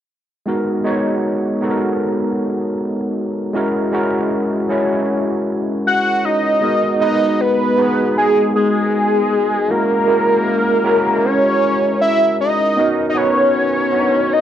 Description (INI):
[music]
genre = R&B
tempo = 78 BPM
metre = 4/4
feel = swing 54% on 16ths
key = G# minor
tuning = A4 = 440 Hz
[part]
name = overdriven tine electric piano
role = accompaniment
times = 0.5-14.4 s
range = G#3 to C#5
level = -18 LUFS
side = equal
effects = analog chorus
[part]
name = fat analog lead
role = melody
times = 5.9-14.4 s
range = G#4 to F#5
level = -15 LUFS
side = equal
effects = chorus, phaser
[sound]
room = moderate echo chamber reverb, RT60 1.4 s, digital ambience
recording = dark, warm production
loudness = -14 LUFS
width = side -10 dB against mid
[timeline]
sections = 0.5-6.6 A section; 6.6-14.4 B section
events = none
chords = 0.5 G#m9; 3.5 F#9; 6.6 G#m9; 9.7 F#9; 12.8 Bmaj9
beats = | 0.46 1.23 2.00 2.77 | 3.54 4.31 5.08 5.84 | 6.62 7.38 8.15 8.92 | 9.69 10.46 11.23 12.00 | 12.77 13.54 14.31